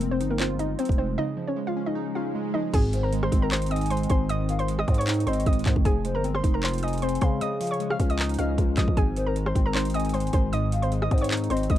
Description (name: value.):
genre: hip hop, trap.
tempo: 154 BPM.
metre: 4/4.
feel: half-time.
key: Ab major.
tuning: A4 = 440 Hz.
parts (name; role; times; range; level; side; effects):
hollow square pluck; melody; 0.0-11.8 s; Bb3 to F6; -30 LUFS; equal; chorus, tape echo.
glassy digital keys; accompaniment; 0.0-11.8 s; Ab2 to F4; -29 LUFS; equal; chorus.
growling 808-style bass; bass; 0.0-11.8 s; F1 to Db3; -28 LUFS; equal; none.
trap drum kit; drums; 0.0-11.8 s; crash cymbal, handclaps, hi-hat, kick drum, rim click; -25 LUFS; equal; none.
swell; sound effects; 1.6-2.7 s; none; -35 LUFS; left 5 dB; none.
hollow clarinet-like synth lead; second line; 2.9-11.7 s; C5 to Ab5; -35 LUFS; left 3 dB; chorus, tape echo.
room: little or no reverb.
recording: dark, warm production.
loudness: -22 LUFS.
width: side -12 dB against mid.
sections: 0.0-2.7 A section; 2.7-11.8 B section.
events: break 1.2-2.7; swell 1.6-2.7.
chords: 0.0 Fm7; 1.2 Dbadd9; 2.7 Ab; 5.9 Fm7; 7.4 Dbadd9; 9.0 Ab.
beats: 0.01 0.40 0.79 | 1.18 1.57 1.96 2.35 | 2.74 3.12 3.52 3.90 | 4.29 4.68 5.07 5.46 | 5.85 6.24 6.63 7.02 | 7.41 7.80 8.19 8.58 | 8.97 9.36 9.75 10.14 | 10.53 10.92 11.31 11.70.